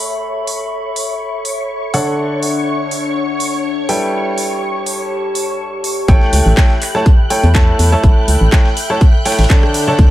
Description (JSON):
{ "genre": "piano house", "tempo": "123 BPM", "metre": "4/4", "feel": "swing 54% on 16ths", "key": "A mixolydian", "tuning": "A4 = 440 Hz", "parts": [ { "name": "analog string pad", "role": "sustained chords", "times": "0.0-10.1 s", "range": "C#5 to F#6", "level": "-24 LUFS", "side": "right 1 dB", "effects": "ensemble chorus, sidechain pumping" }, { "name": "clear baby grand piano", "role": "riff", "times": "0.0-10.1 s", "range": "D3 to A5", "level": "-18 LUFS", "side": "equal", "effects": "sidechain pumping, dub echo" }, { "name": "warbly tape-like pad", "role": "texture", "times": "0.0-10.1 s", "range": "D4 to B5", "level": "-23 LUFS", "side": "left 3 dB", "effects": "chorus, built-in reverb, sidechain pumping" }, { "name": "house drum kit", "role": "drums", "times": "0.5-9.8 s", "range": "handclaps, hi-hat, rim click", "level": "-21 LUFS", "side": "equal", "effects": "small room ambience" }, { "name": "organ-like FM bass", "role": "bass", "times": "6.1-10.1 s", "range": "A1 to E2", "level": "-12 LUFS", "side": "equal", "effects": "sidechain pumping" }, { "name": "breakbeat sampler-style drum kit", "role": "drums", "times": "6.1-10.1 s", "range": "hi-hat, snare drum", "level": "-29 LUFS", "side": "equal", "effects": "sidechain pumping on hats, high-pass filter on hats, small room ambience, high-pass filter on snare" }, { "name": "electronic kick drum", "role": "drums", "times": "6.1-10.1 s", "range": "none", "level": "-10 LUFS", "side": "equal", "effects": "small room ambience" } ], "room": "little or no reverb", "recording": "faint mains hum", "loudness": "-12 LUFS", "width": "side -14 dB against mid", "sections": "0.0-6.1 A section; 6.1-10.1 B section", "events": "filter sweep on analog synth pad 0.0-6.1; drop 6.1-10.1", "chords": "0.0 A7; 1.9 Dmaj7; 3.9 G69; 6.1 A7" }